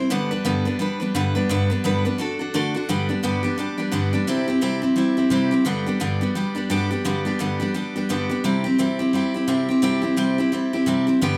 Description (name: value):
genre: rock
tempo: 173 BPM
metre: 4/4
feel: swing 60% on 8ths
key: G major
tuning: A4 = 440 Hz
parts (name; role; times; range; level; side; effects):
- picked steel-string acoustic guitar; solo; 0.0-11.4 s; G2 to C5; -22 LUFS; equal; none
room: moderate large studio reverb, RT60 1.2 s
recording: band playing live in one room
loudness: -22 LUFS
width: mono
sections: 0.0-2.9 A section; 2.9-11.4 B section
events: none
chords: 0.1 G; 2.2 D; 2.9 G; 4.3 C; 5.7 G; 8.4 C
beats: | 0.10 0.45 0.80 1.15 | 1.49 1.84 2.19 2.54 | 2.89 3.23 3.58 3.93 | 4.28 4.63 4.97 5.32 | 5.67 6.01 6.36 6.71 | 7.06 7.40 7.75 8.10 | 8.44 8.79 9.14 9.48 | 9.83 10.18 10.52 10.87 | 11.21